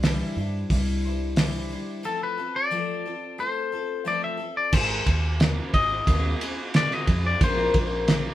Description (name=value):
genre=folk rock and heartland rock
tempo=89 BPM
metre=4/4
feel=straight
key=unclear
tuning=A4 = 442 Hz
part: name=picked twelve-string acoustic guitar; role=accompaniment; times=0.0-8.3 s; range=Bb2 to C5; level=-30 LUFS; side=left 3 dB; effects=none
part: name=fingered electric bass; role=bass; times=0.0-8.3 s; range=Ab1 to G2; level=-27 LUFS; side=equal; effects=none
part: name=cloth-damped thuddy drum kit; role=drums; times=0.0-8.2 s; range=crash cymbal, hi-hat, kick drum, ride cymbal, snare drum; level=-23 LUFS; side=right 1 dB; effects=none
part: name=twangy electric guitar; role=melody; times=2.1-8.3 s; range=A4 to E5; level=-27 LUFS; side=left 3 dB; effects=none
room=moderate studio reverb, RT60 0.6 s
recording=band playing live in one room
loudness=-22 LUFS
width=side -13 dB against mid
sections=0.0-4.7 A section; 4.7-8.3 B section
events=none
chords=0.0 Cadd9; 2.0 F; 4.7 Abadd9; 7.4 Bb